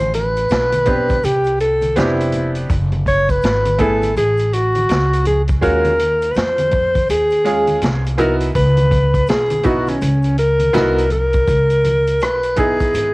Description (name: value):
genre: hip hop, jazz-hop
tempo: 82 BPM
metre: 4/4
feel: swing 62% on 16ths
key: unclear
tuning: A4 = 440 Hz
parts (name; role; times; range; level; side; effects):
- breathy alto saxophone; melody; 0.0-13.1 s; C#4 to C#5; -16 LUFS; equal; cassette tape
- upright bass; bass; 0.0-13.1 s; E#1 to E#2; -19 LUFS; equal; none
- vintage drum kit; drums; 0.1-13.1 s; hi-hat, kick drum, rim click, snare drum; -23 LUFS; equal; cassette tape
- congas and tube shaker; percussion; 0.1-13.1 s; none; -29 LUFS; left 1 dB; none
- bright grand piano; accompaniment; 0.9-13.1 s; G#3 to G#4; -19 LUFS; right 1 dB; cassette tape
room: light reverb, small room ambience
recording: home recording on cassette, vinyl crackle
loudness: -13 LUFS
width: side -23 dB against mid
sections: 0.0-11.5 A section; 11.5-13.1 B section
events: none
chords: 0.0 Am11; 2.7 F#madd9; 5.6 D#m11; 8.6 C#m11; 11.5 C#m9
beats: 0.50 1.23 1.97 | 2.70 3.43 4.16 4.89 | 5.62 6.36 7.09 7.82 | 8.55 9.28 10.01 10.74 | 11.48 12.21 12.94